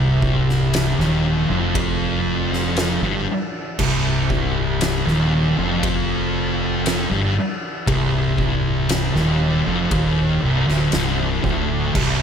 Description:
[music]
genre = stoner and doom metal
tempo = 59 BPM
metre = 4/4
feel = straight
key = C minor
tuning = A4 = 440 Hz
[part]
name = thick fuzz guitar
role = riff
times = 0.0-12.2 s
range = C2 to G2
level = -21 LUFS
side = left 7 dB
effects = distortion
[part]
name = thick fuzz guitar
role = riff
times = 0.0-12.2 s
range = C2 to G2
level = -22 LUFS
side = right 8 dB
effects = distortion
[part]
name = mellow fretless electric bass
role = bass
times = 0.0-12.2 s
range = C1 to G1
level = -26 LUFS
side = equal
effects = overdrive
[part]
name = oversized low-tuned drum kit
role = drums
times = 0.2-12.2 s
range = crash cymbal, kick drum, ride cymbal, snare drum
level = -24 LUFS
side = equal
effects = none
[sound]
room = light reverb, small room ambience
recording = none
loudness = -17 LUFS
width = side -7 dB against mid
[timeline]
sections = 0.0-12.2 A section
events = none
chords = 0.0 Cm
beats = 0.73 1.75 2.77 | 3.79 4.81 5.83 6.85 | 7.87 8.89 9.91 10.93 | 11.96

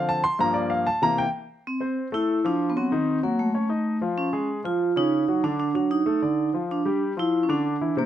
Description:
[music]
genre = jazz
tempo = 190 BPM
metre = 4/4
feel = straight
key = unclear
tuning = A4 = 440 Hz
[part]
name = warm concert grand piano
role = accompaniment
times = 0.0-8.1 s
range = G2 to C6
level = -25 LUFS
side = left 2 dB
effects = slapback echo
[part]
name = vibraphone with medium hard mallets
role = melody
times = 1.7-8.1 s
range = A3 to F4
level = -23 LUFS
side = right 2 dB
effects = none
[sound]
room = light reverb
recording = recorded outdoors, with no room sound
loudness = -22 LUFS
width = side -11 dB against mid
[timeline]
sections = 0.0-1.7 A section; 1.7-8.1 B section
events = grand piano solo 0.0-1.7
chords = 0.4 Gm7; 1.0 C7; 1.7 Fmaj7; 2.9 Cdim; 3.5 Faug7; 4.2 Dbadd9; 5.4 D; 6.7 G5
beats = 0.08 | 0.40 0.71 1.03 1.34 | 1.66 1.97 2.29 2.60 | 2.92 3.23 3.55 3.86 | 4.18 4.50 4.81 5.13 | 5.44 5.76 6.07 6.39 | 6.71 7.02 7.34 7.65 | 7.97

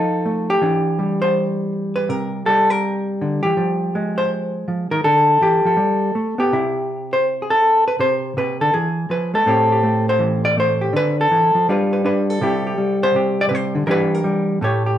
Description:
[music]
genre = solo jazz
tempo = 163 BPM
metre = 4/4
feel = swing 64% on 8ths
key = C major, A minor from 9.5 s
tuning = A4 = 444 Hz
[part]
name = hollow-body jazz guitar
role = solo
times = 0.0-15.0 s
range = A2 to D5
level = -16 LUFS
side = equal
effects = none
[sound]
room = wet large studio reverb, RT60 0.8 s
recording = band playing live in one room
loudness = -16 LUFS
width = side -11 dB against mid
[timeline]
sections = 0.0-9.5 A section; 9.5-15.0 B section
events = none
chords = 0.0 F7; 0.6 Em7; 2.1 C7(no3); 3.6 Fmadd9; 5.0 Dm; 5.8 G; 6.5 C; 8.7 E; 9.5 Am7; 10.9 Dm9; 11.7 G7; 12.4 C69; 13.9 Em7b5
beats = 0.25 | 0.62 0.99 1.35 1.72 | 2.09 2.46 2.83 3.20 | 3.57 3.94 4.31 4.67 | 5.04 5.41 5.78 6.15 | 6.52 6.89 7.26 7.63 | 8.00 8.36 8.73 9.10 | 9.47 9.84 10.21 10.57 | 10.94 11.31 11.68 12.04 | 12.41 12.78 13.14 13.51 | 13.88 14.25 14.61 14.98

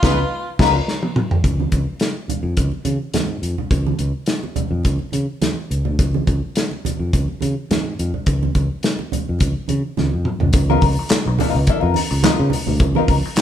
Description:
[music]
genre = funk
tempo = 106 BPM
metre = 4/4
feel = straight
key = Db mixolydian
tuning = A4 = 440 Hz
[part]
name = breathy tenor saxophone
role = melody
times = 0.0-0.5 s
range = F4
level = -25 LUFS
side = equal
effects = none
[part]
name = warm horn section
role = second line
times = 0.0-0.7 s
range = Ab3 to Cb5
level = -27 LUFS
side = right 1 dB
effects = none
[part]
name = vintage hollow-body jazz guitar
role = accompaniment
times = 0.0-0.8, 10.6-13.3 s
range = Cb4 to Cb5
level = -22 LUFS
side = left 8 dB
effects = wah
[part]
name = fingered electric bass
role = bass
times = 0.0-13.2 s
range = Cb2 to Db3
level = -20 LUFS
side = equal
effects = none
[part]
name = warm soul drum kit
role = drums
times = 0.0-13.4 s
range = crash cymbal, handclaps, hi-hat, kick drum, snare drum, toms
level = -19 LUFS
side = equal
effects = none
[part]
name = congas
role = percussion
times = 1.6-13.4 s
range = none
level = -25 LUFS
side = right 5 dB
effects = none
[sound]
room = moderate stone room reverb, RT60 1.0 s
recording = band playing live in one room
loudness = -17 LUFS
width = side -10 dB against mid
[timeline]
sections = 0.0-1.4 A section; 1.4-10.5 B section; 10.5-13.4 C section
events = band accent 0.0-1.4; tenor saxophone solo 0.0-1.4; drum fill 0.9-1.4, 10.0-10.5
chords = 0.0 Db13; 1.4 Db; 10.5 Db13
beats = 0.31 0.87 | 1.44 2.00 2.57 3.14 | 3.71 4.28 4.85 5.42 | 5.99 6.56 7.13 7.70 | 8.27 8.84 9.41 9.98 | 10.54 11.11 11.68 12.24 | 12.80 13.37

